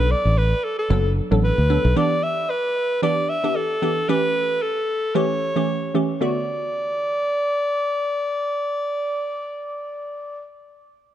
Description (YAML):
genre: afrobeats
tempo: 113 BPM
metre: 4/4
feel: swing 55% on 16ths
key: B minor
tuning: A4 = 438 Hz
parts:
  - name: breathy alto saxophone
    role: melody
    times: 0.0-10.4 s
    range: A4 to E5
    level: -22 LUFS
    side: equal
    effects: digital delay
  - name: glassy wavetable pluck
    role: accompaniment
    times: 0.0-10.4 s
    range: D3 to A4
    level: -23 LUFS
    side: right 1 dB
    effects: chorus
  - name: fingered electric bass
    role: bass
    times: 0.0-1.9 s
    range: F#1 to D2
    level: -18 LUFS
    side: equal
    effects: none
room: light reverb, small room ambience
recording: dark, warm production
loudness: -19 LUFS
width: side -11 dB against mid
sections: 0.0-6.2 A section; 6.2-10.5 B section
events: none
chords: 0.0 Bm7; 2.0 Em7; 4.1 A7; 6.2 Bm7